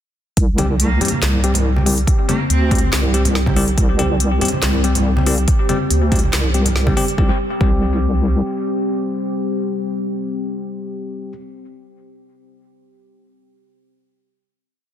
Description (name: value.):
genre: deep dubstep.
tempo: 141 BPM.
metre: 4/4.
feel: swing 53% on 16ths, half-time.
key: unclear.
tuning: A4 = 440 Hz.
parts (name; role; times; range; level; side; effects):
deep dark ambient pad; sustained chords; 1.6-10.9 s; C4 to G4; -26 LUFS; equal; chorus, built-in reverb.
deep soft wobble bass; bass; 0.4-8.4 s; C2 to D2; -17 LUFS; equal; chorus.
deep house drum kit; drums; 0.4-7.2 s; handclaps, hi-hat, snare drum; -22 LUFS; left 1 dB; none.
electronic kick drum; drums; 0.4-7.7 s; none; -17 LUFS; equal; none.
bell-like tine electric piano; stabs; 0.6-11.3 s; G3 to G4; -23 LUFS; left 4 dB; dub echo.
congas; percussion; 0.6-6.9 s; none; -24 LUFS; right 3 dB; none.
warm cello; melody; 0.8-2.8 s; Bb3 to C4; -27 LUFS; equal; dub echo.
room: light reverb, digital ambience.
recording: dense, heavily limited modern master.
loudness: -15 LUFS.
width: side -10 dB against mid.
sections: 0.4-7.2 drop; 7.2-10.6 final chord.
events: drop 0.4-7.2.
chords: 0.4 C5.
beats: | 0.37 0.80 1.22 1.65 | 2.08 2.50 2.93 3.35 | 3.78 4.20 4.63 5.05 | 5.48 5.91 6.33 6.76 | 7.18 7.61 8.03 8.46 | 8.88 9.31 9.73 10.16.